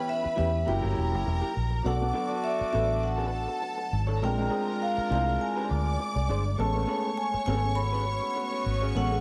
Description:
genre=soul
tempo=102 BPM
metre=4/4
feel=swing 54% on 16ths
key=A major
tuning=A4 = 440 Hz
part: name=vibraphone with medium mallets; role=melody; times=0.0-9.2 s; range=E5 to B5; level=-33 LUFS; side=equal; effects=none
part: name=warm studio string section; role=second line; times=0.0-9.2 s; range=A4 to D6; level=-38 LUFS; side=equal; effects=tape echo
part: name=dark grand piano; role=accompaniment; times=0.0-9.2 s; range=E3 to Bb4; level=-36 LUFS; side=equal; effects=none
part: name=mellow horn section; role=stabs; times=0.0-9.2 s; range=B3 to Bb4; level=-39 LUFS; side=equal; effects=none
part: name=electric guitar through a small old amp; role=riff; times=0.2-9.0 s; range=C#4 to C#5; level=-41 LUFS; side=equal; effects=none
part: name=vintage muted fingered electric bass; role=bass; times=0.3-9.2 s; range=E1 to E2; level=-31 LUFS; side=equal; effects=none
room=small room ambience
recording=none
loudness=-28 LUFS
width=mono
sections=0.0-9.2 A section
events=none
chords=0.0 C#m7b5; 0.7 F#7b9; 1.9 Bm7; 4.2 Bb9; 6.6 Amaj9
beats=0.09 0.68 1.27 | 1.86 2.45 3.04 3.64 | 4.23 4.82 5.41 6.00 | 6.59 7.18 7.78 8.37 | 8.96

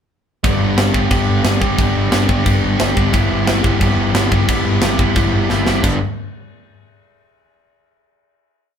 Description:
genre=punk rock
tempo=178 BPM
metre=4/4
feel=straight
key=G major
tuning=A4 = 442 Hz
part: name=overdriven electric guitar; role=riff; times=0.4-6.0 s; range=G2 to G4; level=-17 LUFS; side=left 1 dB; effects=none
part: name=overdriven picked electric bass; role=bass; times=0.4-6.0 s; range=G1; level=-20 LUFS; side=equal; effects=none
part: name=tight metal drum kit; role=drums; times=0.4-5.9 s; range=crash cymbal, kick drum, snare drum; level=-18 LUFS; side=equal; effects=none
room=moderate studio reverb, RT60 0.6 s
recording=band playing live in one room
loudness=-13 LUFS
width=side -8 dB against mid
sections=0.4-5.8 riff; 5.8-7.2 final chord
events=drum fill 5.5-5.8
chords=0.4 G; 3.1 Em/G; 5.8 G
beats=| 0.44 0.78 1.11 1.45 | 1.78 2.12 2.46 2.80 | 3.13 3.47 3.81 4.15 | 4.49 4.82 5.16 5.50 | 5.84

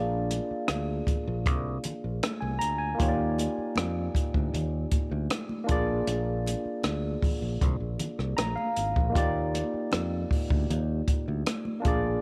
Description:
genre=lush 1970s-style soul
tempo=78 BPM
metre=4/4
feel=straight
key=Eb major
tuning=A4 = 439 Hz
part: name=barky tine electric piano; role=accompaniment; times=0.0-12.2 s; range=Bb3 to Bb5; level=-33 LUFS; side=equal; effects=overdrive, subtle chorus
part: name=fingered electric bass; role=bass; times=0.0-12.2 s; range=Ab1 to F2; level=-33 LUFS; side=equal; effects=none
part: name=compact cocktail drum kit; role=drums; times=0.3-12.0 s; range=hi-hat, kick drum, rim click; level=-31 LUFS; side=equal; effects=none
part: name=congas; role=percussion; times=0.3-11.8 s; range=none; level=-41 LUFS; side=equal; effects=none
room=small room ambience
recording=none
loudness=-29 LUFS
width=mono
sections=0.0-12.2 A section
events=tine electric piano fill 8.0-9.2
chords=0.0 Bb7; 3.0 Ebmaj9; 5.7 Bb7; 9.2 Ebmaj9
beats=0.69 1.46 2.23 | 3.00 3.77 4.54 5.31 | 6.08 6.84 7.61 8.38 | 9.15 9.92 10.69 11.46

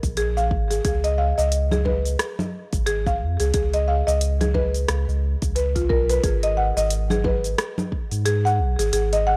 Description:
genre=organic downtempo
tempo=89 BPM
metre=4/4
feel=swing 58% on 16ths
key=G# dorian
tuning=A4 = 440 Hz
part: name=warm sub bass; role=bass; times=0.0-9.4 s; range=G#1 to G#2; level=-25 LUFS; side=equal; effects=tube saturation, sidechain pumping
part: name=electronic kick drum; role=drums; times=0.0-8.1 s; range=none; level=-28 LUFS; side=equal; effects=none
part: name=organic electronic drum kit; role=drums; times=0.0-9.2 s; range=congas, hi-hat, rim click, shaker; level=-29 LUFS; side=equal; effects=none
part: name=buzzing marimba with medium mallets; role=arpeggios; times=0.2-9.4 s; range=E#4 to F#5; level=-26 LUFS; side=equal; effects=analog delay
room=little or no reverb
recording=dry, gritty hardware recording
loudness=-22 LUFS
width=mono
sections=0.0-6.2 A section; 6.2-9.4 B section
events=none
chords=0.0 A#7(no3); 0.8 C#7; 6.2 G#m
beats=0.17 | 0.84 1.52 2.19 2.86 | 3.54 4.21 4.89 5.56 | 6.24 6.91 7.58 8.26 | 8.93

